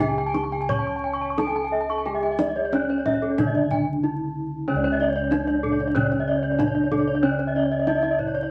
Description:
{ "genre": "Balinese gamelan", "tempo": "85-94 BPM", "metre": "4/4", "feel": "straight", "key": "C# pelog", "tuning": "A4 = 441 Hz", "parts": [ { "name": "gamelan-type bronze metallophone", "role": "melody", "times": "0.0-8.5 s", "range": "C#4 to C#5", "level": "-28 LUFS", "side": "equal", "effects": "none" }, { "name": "gamelan-type bronze metallophone", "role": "accompaniment", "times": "0.0-8.5 s", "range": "C#3 to C#4", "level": "-34 LUFS", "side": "equal", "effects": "none" }, { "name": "gamelan-type bronze metallophone", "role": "arpeggios", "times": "0.0-8.5 s", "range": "A4-40c to C#6", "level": "-30 LUFS", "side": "equal", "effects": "none" }, { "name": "gamelan-type bossed gongs", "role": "bass", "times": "0.0-8.5 s", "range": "C#2 to G#4-45c", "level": "-34 LUFS", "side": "equal", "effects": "none" }, { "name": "kendang", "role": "percussion", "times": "0.0-8.4 s", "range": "none", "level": "-32 LUFS", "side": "equal", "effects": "none" }, { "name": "gamelan-type bronze metallophone", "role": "arpeggios", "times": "0.1-8.4 s", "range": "C#5 to C#6", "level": "-31 LUFS", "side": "equal", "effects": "none" } ], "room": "wet club reverb, RT60 0.8 s", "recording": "vinyl crackle", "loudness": "-23 LUFS", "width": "mono", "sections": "0.0-4.7 A section; 4.7-8.5 B section", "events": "break 3.7-4.7", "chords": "none" }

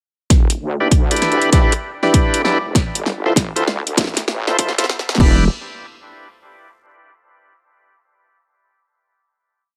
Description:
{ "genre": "glitch hop", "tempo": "98 BPM", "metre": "4/4", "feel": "swing 64% on 16ths", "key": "E phrygian", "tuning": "A4 = 440 Hz", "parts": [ { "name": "wobble bass", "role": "bass", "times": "0.3-5.5 s", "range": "E1 to D2", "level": "-25 LUFS", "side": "equal", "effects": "chorus, tube saturation, high-pass filter" }, { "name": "electronic kick drum", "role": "drums", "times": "0.3-5.4 s", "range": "none", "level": "-16 LUFS", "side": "equal", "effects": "none" }, { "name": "pop drum kit", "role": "drums", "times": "0.3-5.4 s", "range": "crash cymbal, hi-hat, rim click, snare drum", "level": "-23 LUFS", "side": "equal", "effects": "high-pass filter on snare, high-pass filter on hats, high-pass filter on cymbals" }, { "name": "overdriven tonewheel organ", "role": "stabs", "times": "0.8-5.4 s", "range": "D4 to C5", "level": "-22 LUFS", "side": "equal", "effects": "slow rotary speaker, vintage 12-bit sampler grit, sidechain pumping, low-pass filter, dub echo" } ], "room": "light reverb", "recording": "high-pass filter", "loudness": "-16 LUFS", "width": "mono", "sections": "0.3-5.2 build; 5.2-7.7 final chord", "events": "build-up 0.3-5.2; drum fill 0.3-5.2; filter sweep 0.3-5.2", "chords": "0.3 Em7; 2.8 Dm9; 5.2 Em7" }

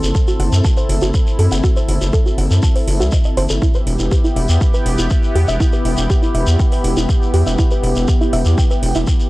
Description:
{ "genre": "melodic techno", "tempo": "121 BPM", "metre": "4/4", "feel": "straight", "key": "E minor", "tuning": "A4 = 441 Hz", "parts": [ { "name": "sweeping resonant pad", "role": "sustained chords", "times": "0.0-9.3 s", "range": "B3 to A4", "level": "-24 LUFS", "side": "left 1 dB", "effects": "chorus, sidechain pumping" }, { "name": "gritty driven synth bass", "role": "bass", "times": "0.0-9.0 s", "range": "E1 to F#2", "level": "-15 LUFS", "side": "equal", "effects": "sidechain pumping" }, { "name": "shekere", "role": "percussion", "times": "0.0-9.3 s", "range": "none", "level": "-28 LUFS", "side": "equal", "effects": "none" }, { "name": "deep dark ambient pad", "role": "texture", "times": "0.0-9.3 s", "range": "B3 to C6", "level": "-27 LUFS", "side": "right 1 dB", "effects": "chorus, built-in reverb, sidechain pumping" }, { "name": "soft round pluck", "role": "arpeggios", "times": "0.1-9.1 s", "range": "E4 to A5", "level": "-24 LUFS", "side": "right 1 dB", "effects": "chorus, sidechain pumping, tape echo" }, { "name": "electronic kick drum", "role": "drums", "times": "0.1-9.2 s", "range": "none", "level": "-15 LUFS", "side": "equal", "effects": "studio reverb" }, { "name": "electronic hi-hat", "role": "drums", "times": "0.4-8.9 s", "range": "none", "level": "-31 LUFS", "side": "right 1 dB", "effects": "studio reverb" } ], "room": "little or no reverb", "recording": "dry, gritty hardware recording", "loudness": "-13 LUFS", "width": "side -19 dB against mid", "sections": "0.0-9.3 A section", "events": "filter sweep on synth arpeggio sound 0.0-9.3", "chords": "0.0 F#dim; 3.6 Em" }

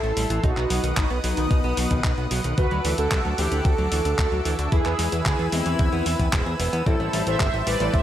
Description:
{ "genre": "italo disco", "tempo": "112 BPM", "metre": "4/4", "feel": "straight", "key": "unclear", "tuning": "A4 = 440 Hz", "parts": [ { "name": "mellow synth brass", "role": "melody", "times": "0.0-8.0 s", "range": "B3 to E5", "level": "-27 LUFS", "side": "equal", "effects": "chorus, digital delay" }, { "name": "lush unison pad", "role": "sustained chords", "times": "0.0-8.0 s", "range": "A4 to E6", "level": "-32 LUFS", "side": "left 1 dB", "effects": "chorus" }, { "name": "direct-recorded clean electric guitar", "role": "arpeggios", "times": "0.0-8.0 s", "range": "D3 to G#4", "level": "-31 LUFS", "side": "right 3 dB", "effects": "wide subtle chorus, digital delay" }, { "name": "fat analog bass", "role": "bass", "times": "0.0-8.0 s", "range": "E1 to E2", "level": "-26 LUFS", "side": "equal", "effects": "none" }, { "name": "clean 12-bit digital drum machine", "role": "drums", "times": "0.0-8.0 s", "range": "handclaps, hi-hat", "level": "-29 LUFS", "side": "equal", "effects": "none" }, { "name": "electronic kick drum", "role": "drums", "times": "0.4-8.0 s", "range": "none", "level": "-23 LUFS", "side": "equal", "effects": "none" }, { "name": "clear baby grand piano", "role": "stabs", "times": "6.9-8.0 s", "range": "A2 to A4", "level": "-30 LUFS", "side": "left 3 dB", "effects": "none" } ], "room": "light reverb", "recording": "none", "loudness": "-20 LUFS", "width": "side -11 dB against mid", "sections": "0.0-8.0 A section", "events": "none", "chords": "0.4 B; 2.6 Dadd9; 4.7 E; 6.9 Am7" }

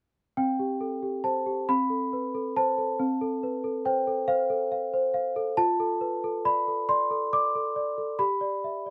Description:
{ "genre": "classical, lullaby for celesta", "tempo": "46 BPM (dotted quarters)", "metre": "6/8", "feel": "straight", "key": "unclear", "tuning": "A4 = 441 Hz", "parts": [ { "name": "celesta", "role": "solo", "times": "0.4-8.9 s", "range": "C4 to D6", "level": "-27 LUFS", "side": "equal", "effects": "none" } ], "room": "little or no reverb", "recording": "close, detailed microphones", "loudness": "-27 LUFS", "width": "mono", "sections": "0.4-8.9 A section", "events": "none", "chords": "0.4 C5; 1.7 Am/C; 3.0 F/C; 5.6 Dm/F; 8.2 G" }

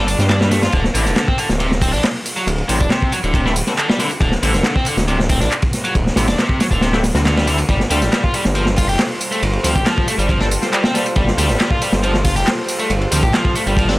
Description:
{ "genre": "breakbeat, breaks", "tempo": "138 BPM", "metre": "4/4", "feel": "straight", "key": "unclear", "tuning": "A4 = 440 Hz", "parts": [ { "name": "biting overdriven guitar", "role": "riff", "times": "0.0-13.9 s", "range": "C3 to G4", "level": "-21 LUFS", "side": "equal", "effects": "tape echo" }, { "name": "band-passed chord stab", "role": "stabs", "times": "0.0-14.0 s", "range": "D3 to C5", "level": "-26 LUFS", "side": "left 2 dB", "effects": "phaser, tape echo" }, { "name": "detuned saw bass", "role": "bass", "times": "0.0-14.0 s", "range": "D1 to G2", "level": "-18 LUFS", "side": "equal", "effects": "none" }, { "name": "crunchy breakbeat drum kit", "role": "drums", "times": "0.1-14.0 s", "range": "hi-hat, kick drum, ride cymbal, snare drum", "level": "-18 LUFS", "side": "equal", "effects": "none" }, { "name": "house drum kit", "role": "drums", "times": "0.1-13.9 s", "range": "handclaps, hi-hat, tambourine", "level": "-25 LUFS", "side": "equal", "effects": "none" }, { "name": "lush unison pad", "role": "sustained chords", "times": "7.7-14.0 s", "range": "G3 to C5", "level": "-26 LUFS", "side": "equal", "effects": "chorus, sidechain pumping" } ], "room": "little or no reverb", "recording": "dry, gritty hardware recording", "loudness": "-14 LUFS", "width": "side -19 dB against mid", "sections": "0.0-14.0 A section", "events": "none", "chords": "0.0 G9sus4; 0.7 D9sus4; 7.7 G9sus4" }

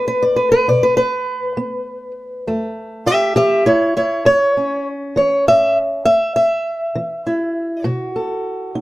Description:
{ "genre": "acoustic country blues, solo or duo", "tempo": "67 BPM (dotted quarters)", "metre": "12/8", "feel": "straight", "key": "unclear", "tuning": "A4 = 444 Hz", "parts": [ { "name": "fingerpicked old ladder-braced acoustic guitar", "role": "solo", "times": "0.0-8.8 s", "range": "E2 to E5", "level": "-15 LUFS", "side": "equal", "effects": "none" } ], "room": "light reverb", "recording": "none", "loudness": "-15 LUFS", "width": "side -17 dB against mid", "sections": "0.0-8.8 A section", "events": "steel-string acoustic guitar solo 0.0-8.8", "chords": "0.0 B7(no3); 2.5 A7; 6.1 N.C.; 7.9 B7(no3)" }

